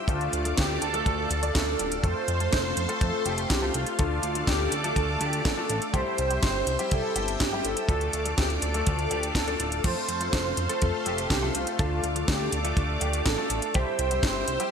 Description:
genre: italo disco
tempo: 123 BPM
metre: 4/4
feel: straight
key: D minor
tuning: A4 = 440 Hz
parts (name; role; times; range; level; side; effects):
- string machine, full ensemble; sustained chords; 0.0-14.7 s; A4 to E6; -33 LUFS; equal; ensemble chorus
- warm grand piano; stabs; 0.0-14.7 s; G3 to D5; -33 LUFS; left 3 dB; analog chorus, low-pass filter
- mellow synth brass; melody; 0.1-14.7 s; F4 to C5; -30 LUFS; right 2 dB; chorus, digital delay
- chorused synth bass; bass; 0.1-14.6 s; D1 to F2; -31 LUFS; equal; none
- house drum kit; drums; 0.1-14.7 s; crash cymbal, hi-hat, snare drum; -31 LUFS; equal; overdrive, gated reverb
- kick drum; drums; 0.1-14.3 s; none; -27 LUFS; equal; none
room: moderate lush hall reverb, RT60 2.0 s, small room ambience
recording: bright 1980s-style digital production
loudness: -24 LUFS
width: side -7 dB against mid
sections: 0.0-14.7 A section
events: none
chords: 0.1 Dm; 2.0 F; 4.0 Dm; 5.9 C; 7.9 Dm; 9.8 F; 11.8 Dm; 13.7 C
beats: | 0.09 0.57 1.06 1.55 | 2.04 2.52 3.01 3.50 | 3.99 4.48 4.96 5.45 | 5.94 6.43 6.92 7.40 | 7.89 8.38 8.87 9.35 | 9.84 10.33 10.82 11.30 | 11.79 12.28 12.77 13.26 | 13.74 14.23

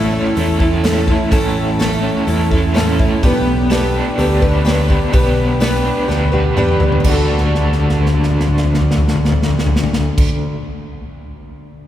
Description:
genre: folk rock and heartland rock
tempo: 126 BPM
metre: 4/4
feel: straight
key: D major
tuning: A4 = 440 Hz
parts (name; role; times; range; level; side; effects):
- picked twelve-string acoustic guitar; accompaniment; 0.0-10.6 s; A2 to B4; -20 LUFS; left 1 dB; none
- warm grand piano; accompaniment; 0.0-10.2 s; C#4 to B5; -26 LUFS; right 2 dB; none
- raw garage guitar; riff; 0.0-10.6 s; A2 to B4; -20 LUFS; equal; overdrive, tremolo
- picked electric bass; bass; 0.0-10.2 s; A1 to E2; -18 LUFS; equal; none
- natural country drum kit; drums; 0.4-10.3 s; crash cymbal, hi-hat, kick drum, snare drum, toms; -18 LUFS; equal; none
room: wet cathedral reverb, RT60 5.6 s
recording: recorded in a church or concert hall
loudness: -13 LUFS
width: side -12 dB against mid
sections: 0.0-7.0 A section; 7.0-10.9 B section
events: drum fill 6.1-7.0, 7.3-10.2; grand piano fill 6.1-7.0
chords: 0.0 A; 3.2 G/B; 7.0 D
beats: 0.37 0.84 | 1.32 1.80 2.27 2.75 | 3.23 3.71 4.18 4.66 | 5.14 5.62 6.09 6.57 | 7.04 7.52 8.00 8.47 | 8.95 9.43 9.90 10.38

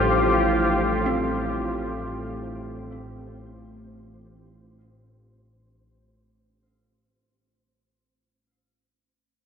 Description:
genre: dark ambient drone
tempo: free time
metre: none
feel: none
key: unclear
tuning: A4 = 440 Hz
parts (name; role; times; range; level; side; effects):
- deep dark ambient pad; sustained chords; 0.0-5.7 s; D4 to A4; -24 LUFS; left 2 dB; chorus, built-in reverb
- gamelan-type bronze metallophone; arpeggios; 0.0-8.5 s; D3 to C4; -35 LUFS; right 1 dB; tape echo
- analog drone; drone; 0.0-5.8 s; A1 to A2; -28 LUFS; right 1 dB; chorus
- flickering grainy texture; texture; 0.0-5.7 s; C5; -34 LUFS; equal; built-in reverb
room: wet huge ambient reverb, RT60 6.9 s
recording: worn, warbling old tape, cassette tape, warbly pitch drift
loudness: -22 LUFS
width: side -7 dB against mid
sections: 0.0-5.7 A section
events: fade-out 0.0-5.7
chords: 0.0 Fadd9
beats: free time

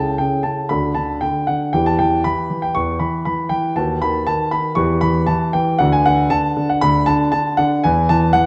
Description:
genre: classical-period piano sonatina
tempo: 118 BPM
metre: 4/4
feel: straight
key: unclear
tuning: A4 = 440 Hz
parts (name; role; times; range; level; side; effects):
- warm concert grand piano; solo; 0.0-8.5 s; C#2 to C#6; -18 LUFS; equal; none
room: wet recital hall reverb, RT60 1.5 s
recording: dark, warm production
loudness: -18 LUFS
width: mono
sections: 0.0-8.5 A section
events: none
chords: 0.0 A/C#; 0.7 D; 1.7 Em; 3.8 B/D#; 4.8 Em; 5.8 Bm/D; 7.8 E5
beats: 0.19 0.71 1.22 | 1.73 2.25 2.75 3.26 | 3.77 4.27 4.78 5.29 | 5.80 6.31 6.82 7.33 | 7.84 8.34

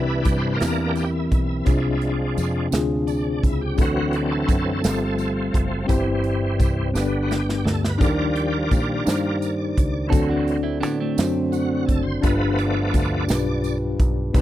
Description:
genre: slow gospel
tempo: 57 BPM (dotted quarters)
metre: 6/8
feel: straight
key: unclear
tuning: A4 = 440 Hz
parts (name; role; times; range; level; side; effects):
- mellow tine electric piano; accompaniment; 0.0-14.4 s; G2 to C5; -23 LUFS; left 2 dB; medium stereo tremolo
- bright tonewheel organ; sustained chords; 0.0-14.4 s; D3 to D5; -28 LUFS; right 2 dB; slow rotary speaker, chorus vibrato
- dark French horn section; sustained chords; 0.0-14.4 s; D3 to D5; -35 LUFS; right 2 dB; none
- fingered electric bass; bass; 0.0-14.4 s; F#1 to Bb2; -27 LUFS; equal; none
- natural country drum kit; drums; 0.2-14.4 s; hi-hat, kick drum, snare drum; -22 LUFS; equal; none
- tambourine; percussion; 0.3-14.4 s; none; -40 LUFS; right 20 dB; none
- clean electric guitar; second line; 10.1-12.0 s; A3 to A4; -28 LUFS; right 8 dB; none
room: small room ambience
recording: dry, close 1970s-style studio recording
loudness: -19 LUFS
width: side -13 dB against mid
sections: 0.0-14.4 A section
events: tonewheel organ solo 0.0-14.4; drum fill 7.0-8.0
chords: 0.0 Cmaj7; 0.6 C7/E; 1.7 Fm6/C; 3.8 D7; 4.8 G9sus4; 5.9 C/G; 7.0 G; 8.0 Ebmaj7; 10.1 D7; 12.2 G7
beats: 0.61 | 1.67 2.72 | 3.78 4.84 | 5.90 6.96 | 8.01 9.07 | 10.12 11.18 | 12.23 13.29 | 14.35

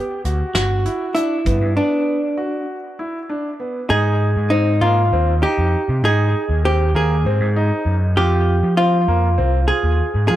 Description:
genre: progressive instrumental, band music in an uneven meter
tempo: 197 BPM (eighths)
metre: 7/8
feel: straight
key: unclear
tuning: A4 = 441 Hz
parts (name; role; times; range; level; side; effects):
- vintage hollow-body jazz guitar; melody; 0.0-10.4 s; D4 to Ab4; -19 LUFS; right 1 dB; dub echo
- soft brush drum kit; drums; 0.2-1.6 s; hi-hat, kick drum, snare drum; -23 LUFS; equal; none
- clear concert grand piano; arpeggios; 0.3-10.4 s; Bb3 to F#4; -25 LUFS; left 1 dB; dub echo
- overdriven picked electric bass; bass; 0.3-10.4 s; G1 to F3; -17 LUFS; equal; none
room: light reverb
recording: echo-heavy mix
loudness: -16 LUFS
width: side -13 dB against mid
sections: 0.0-3.9 A section; 3.9-10.4 B section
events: break 1.8-3.9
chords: 0.0 G; 3.9 Ab; 8.2 Fm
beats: 0.26 0.56 0.86 1.17 1.47 | 1.78 2.08 2.39 2.69 3.00 3.30 3.60 | 3.91 4.21 4.52 4.82 5.13 5.43 5.73 | 6.04 6.34 6.65 6.95 7.25 7.56 7.86 | 8.17 8.47 8.78 9.08 9.38 9.69 9.99 | 10.30

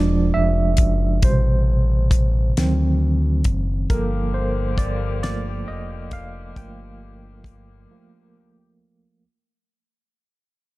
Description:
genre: slow six-eight R&B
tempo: 45 BPM (dotted quarters)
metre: 6/8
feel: straight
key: G minor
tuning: A4 = 440 Hz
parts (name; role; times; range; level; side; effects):
- tine electric piano; accompaniment; 0.0-9.3 s; B2 to G5; -23 LUFS; right 2 dB; overdrive, medium tremolo
- smooth gliding synth bass; bass; 0.0-7.9 s; E1 to D2; -21 LUFS; equal; none
- damped 70s drum kit; drums; 0.8-7.7 s; hi-hat, kick drum, snare drum; -20 LUFS; equal; none
- mellow horn section; stabs; 3.9-8.7 s; D3 to G4; -36 LUFS; left 9 dB; none
room: studio reverb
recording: dark, warm production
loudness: -18 LUFS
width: side -19 dB against mid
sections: 0.0-9.2 A section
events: fade-out 0.0-9.2; tine electric piano solo 0.0-9.2; break 7.9-9.2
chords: 0.0 E7b9; 1.2 Am7; 2.6 D7b9; 3.9 Gm9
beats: | 1.23 2.56 | 3.90 5.23 | 6.56 7.90

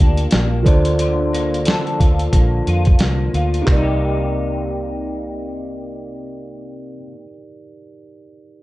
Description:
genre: indie pop, bedroom pop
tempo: 90 BPM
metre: 4/4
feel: swing 60% on 16ths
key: C dorian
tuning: A4 = 442 Hz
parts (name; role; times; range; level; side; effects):
- electric guitar through a small old amp; accompaniment; 0.0-7.3 s; C3 to A4; -24 LUFS; left 3 dB; analog chorus, warbly pitch drift
- mellow tine electric piano; accompaniment; 0.0-8.6 s; Eb4 to D5; -25 LUFS; right 3 dB; cassette tape, plate reverb
- vintage muted fingered electric bass; bass; 0.0-7.0 s; Bb1 to F2; -20 LUFS; equal; none
- dusty soul sampler-style drum kit; drums; 0.2-3.9 s; handclaps, hi-hat, kick drum, snare drum, toms; -16 LUFS; equal; vintage 12-bit sampler grit
room: light reverb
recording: none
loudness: -15 LUFS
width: side -18 dB against mid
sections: 0.0-3.7 A section; 3.7-6.3 B section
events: none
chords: 0.0 Ebmaj7 (rootless); 0.7 Bbmaj7/D; 3.7 Cm7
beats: 0.33 | 0.99 1.66 2.33 3.00 | 3.67 4.34 5.01 5.68

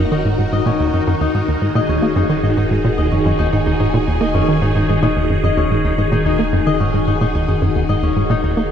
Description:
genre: ambient, sequencer-driven space music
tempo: 110 BPM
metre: 4/4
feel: straight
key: Eb minor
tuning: A4 = 440 Hz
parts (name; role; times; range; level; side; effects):
- phased string machine; sustained chords; 0.0-8.7 s; Eb3 to Bb4; -19 LUFS; equal; ensemble chorus, phaser
- concert harp; arpeggios; 0.0-8.7 s; Db4 to Eb5; -22 LUFS; left 6 dB; auto-pan, ping-pong delay
- tight sequencer bass; riff; 0.0-8.6 s; Eb2 to Bb3; -17 LUFS; right 1 dB; wide subtle chorus, ping-pong delay
- round analog bass; bass; 0.0-8.7 s; Eb1; -26 LUFS; right 1 dB; none
room: light reverb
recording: none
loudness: -14 LUFS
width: side -8 dB against mid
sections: 0.0-8.7 A section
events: none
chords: 0.0 Ebm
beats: 0.12 0.66 | 1.21 1.75 2.30 2.84 | 3.39 3.93 4.48 5.03 | 5.57 6.12 6.66 7.21 | 7.75 8.30

